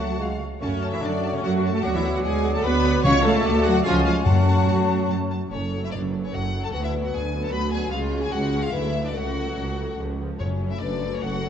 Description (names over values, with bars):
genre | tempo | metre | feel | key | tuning
quick classical-period movement for symphony orchestra | 147 BPM | 3/4 | rubato | F# minor | A4 = 445 Hz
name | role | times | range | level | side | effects
rich chamber violin section | melody | 0.0-11.5 s | C#5 to B5 | -35 LUFS | left 4 dB | none
clear symphonic violin section | second line | 0.0-11.5 s | C#4 to C#6 | -33 LUFS | left 3 dB | none
large flute ensemble | second line | 0.0-5.3 s | E#5 to A5 | -32 LUFS | left 4 dB | none
mellow cor anglais | second line | 0.0-5.3 s | C#5 to D5 | -34 LUFS | left 1 dB | none
dark bassoon | accompaniment | 0.0-5.3 s | F#3 to A3 | -31 LUFS | equal | none
rich studio viola section | accompaniment | 0.0-11.5 s | E#3 to C#5 | -29 LUFS | equal | none
mellow French horn section | sustained chords | 0.0-11.5 s | G#3 to B4 | -30 LUFS | left 6 dB | none
clear chamber double bass section | bass | 0.0-11.5 s | F#1 to F#2 | -28 LUFS | right 2 dB | none
rich studio cello section | bass | 0.0-11.5 s | C#2 to C#4 | -27 LUFS | right 3 dB | none
timpani | percussion | 3.0-4.8, 10.4-11.0 s | F#2 to C#3 | -24 LUFS | left 2 dB | none
room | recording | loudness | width
wet scoring stage reverb, RT60 2.2 s | dark, warm production, nothing above 8.0 kHz | -21 LUFS | side -8 dB against mid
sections
0.0-5.5 A section; 5.5-11.5 A section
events
none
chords
0.2 C#; 0.6 F#m; 1.8 Bm/D; 3.0 C#; 3.4 D; 3.9 C#; 4.3 F#m; 6.7 Bm/D; 7.9 C#5; 8.7 D; 9.2 F#m/C#; 10.0 C#; 10.4 F#m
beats
0.20 | 0.62 1.03 1.44 | 1.85 2.25 2.65 | 3.05 3.45 3.85 | 4.26 4.68 5.10 | 5.52 5.93 6.34 | 6.74 7.14 7.54 | 7.93 8.33 8.74 | 9.15 9.57 9.99 | 10.41 10.82 11.23